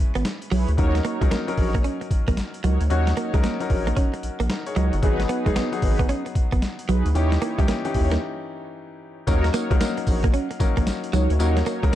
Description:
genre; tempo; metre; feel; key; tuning
R&B, new jack swing; 113 BPM; 4/4; swing 64% on 16ths; unclear; A4 = 440 Hz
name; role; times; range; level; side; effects
clear baby grand piano; accompaniment; 0.0-11.9 s; E3 to F#5; -29 LUFS; left 4 dB; none
round analog bass; bass; 0.0-11.9 s; G1 to D#2; -22 LUFS; equal; none
direct-recorded clean electric guitar; riff; 0.2-11.9 s; F#3 to C#4; -28 LUFS; right 5 dB; wide subtle chorus
boom bap sampler-style drum kit; drums; 0.2-11.9 s; hi-hat, kick drum, snare drum, tambourine; -24 LUFS; equal; overdrive
mellow synth brass; stabs; 0.5-11.9 s; D#4 to C#5; -30 LUFS; right 1 dB; chorus, tape echo
room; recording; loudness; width
little or no reverb; dark, warm production; -20 LUFS; side -13 dB against mid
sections
0.0-9.3 A section; 9.3-11.9 B section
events
break 8.2-9.3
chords
0.0 C#m7; 0.8 D#m7; 5.0 G#m7; 7.2 D#7b9; 9.3 D#m7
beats
0.25 | 0.78 1.31 1.84 2.37 | 2.90 3.44 3.97 4.50 | 5.03 5.56 6.09 6.62 | 7.15 7.68 8.21 8.74 | 9.28 9.81 10.34 10.87 | 11.40 11.93

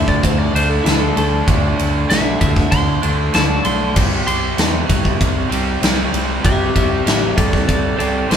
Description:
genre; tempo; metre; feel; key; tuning
hard rock; 97 BPM; 4/4; straight; unclear; A4 = 436 Hz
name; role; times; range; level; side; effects
lightly driven lead guitar; melody; 0.0-8.4 s; E4 to C6; -21 LUFS; equal; none
cranked stack guitar; riff; 0.0-8.4 s; C3 to D4; -20 LUFS; equal; overdrive
picked electric bass; bass; 0.0-8.4 s; A1 to E2; -21 LUFS; equal; none
big rock drum kit; drums; 0.1-8.4 s; crash cymbal, kick drum, ride cymbal, snare drum; -17 LUFS; equal; none
room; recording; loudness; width
light reverb; band playing live in one room; -14 LUFS; side -8 dB against mid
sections
0.0-8.4 A section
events
lead electric guitar solo 0.0-8.4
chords
0.0 D5; 4.0 C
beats
0.23 0.86 | 1.48 2.10 2.72 3.34 | 3.96 4.58 5.20 5.82 | 6.44 7.07 7.68 8.30

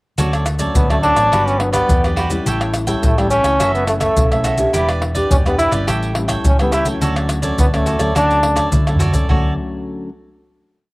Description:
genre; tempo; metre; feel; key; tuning
samba and choro; 105 BPM; 4/4; straight; D major; A4 = 440 Hz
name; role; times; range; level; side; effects
cavaquinho; accompaniment; 0.2-9.5 s; E4 to G5; -22 LUFS; right 2 dB; cassette tape
nylon-string guitar; accompaniment; 0.2-10.1 s; F#2 to G4; -24 LUFS; left 2 dB; cassette tape
hollow-body short-scale fingered electric bass; bass; 0.2-9.6 s; E1 to D3; -21 LUFS; equal; none
maracas, surdo, pandeiro and tamborim; percussion; 0.2-9.4 s; none; -18 LUFS; equal; none
bright trombone; melody; 0.8-8.7 s; G3 to E4; -17 LUFS; equal; cassette tape
room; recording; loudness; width
moderate spring reverb, RT60 1.5 s, small room reverb; home recording on cassette; -14 LUFS; side -22 dB against mid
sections
0.2-9.3 A section; 9.3-10.9 final chord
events
drum fill 8.9-9.3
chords
0.2 Dmaj7; 1.3 Gmaj7; 2.5 A7; 3.6 F#m7; 4.7 Em7; 5.9 A7; 7.0 Dmaj7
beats
| 0.18 0.75 1.32 1.89 | 2.46 3.03 3.60 4.17 | 4.74 5.31 5.88 6.45 | 7.02 7.59 8.15 8.72 | 9.29 9.86

